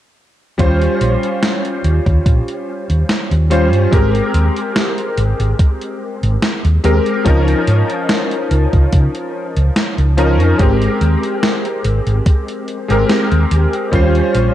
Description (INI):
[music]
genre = vaporwave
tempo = 72 BPM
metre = 4/4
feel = swing 53% on 16ths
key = Ab major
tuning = A4 = 441 Hz
[part]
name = clear electric grand piano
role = accompaniment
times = 0.6-14.5 s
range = F3 to C5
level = -17 LUFS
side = left 1 dB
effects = ensemble chorus, vintage 12-bit sampler grit, analog delay
[part]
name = hollow-body short-scale fingered electric bass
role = bass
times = 0.6-14.5 s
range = Ab1 to Db3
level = -14 LUFS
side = equal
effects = tube saturation
[part]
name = electronic kick drum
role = drums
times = 0.6-14.1 s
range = none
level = -13 LUFS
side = equal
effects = none
[part]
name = gated 80s digital drum machine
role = drums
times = 0.6-14.5 s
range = hi-hat, snare drum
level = -20 LUFS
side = equal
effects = gated reverb, gated reverb snare
[sound]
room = digital ambience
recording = dark, warm production, cassette tape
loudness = -12 LUFS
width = side -12 dB against mid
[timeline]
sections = 0.6-14.5 A section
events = none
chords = 0.6 Eb13; 3.9 Abmaj9; 7.3 Db69; 10.6 Abmaj9; 13.9 Eb13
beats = | 0.59 1.43 2.26 3.10 | 3.93 4.76 5.59 6.43 | 7.26 8.10 8.93 9.76 | 10.60 11.43 12.26 13.10 | 13.93